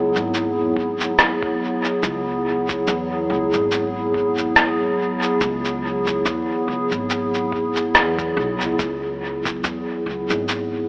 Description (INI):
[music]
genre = ambient dub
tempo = 71 BPM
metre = 4/4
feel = swing 56% on 16ths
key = C# minor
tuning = A4 = 440 Hz
[part]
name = warbly tape-like pad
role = sustained chords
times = 0.0-10.9 s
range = F#3 to G#4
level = -24 LUFS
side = equal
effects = chorus, built-in reverb
[part]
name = upright bass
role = bass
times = 0.0-10.9 s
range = G#1 to E2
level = -32 LUFS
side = equal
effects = none
[part]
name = electronic shaker and rim click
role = drums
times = 0.2-10.7 s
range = none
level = -22 LUFS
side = equal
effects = dub echo
[part]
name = electronic kick drum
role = drums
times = 0.8-9.6 s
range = none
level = -33 LUFS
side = equal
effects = none
[sound]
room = moderate huge ambient reverb, RT60 4.7 s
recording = vinyl crackle, AM radio sound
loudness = -21 LUFS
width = mono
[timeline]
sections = 0.0-10.9 A section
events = none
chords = 0.0 C#m7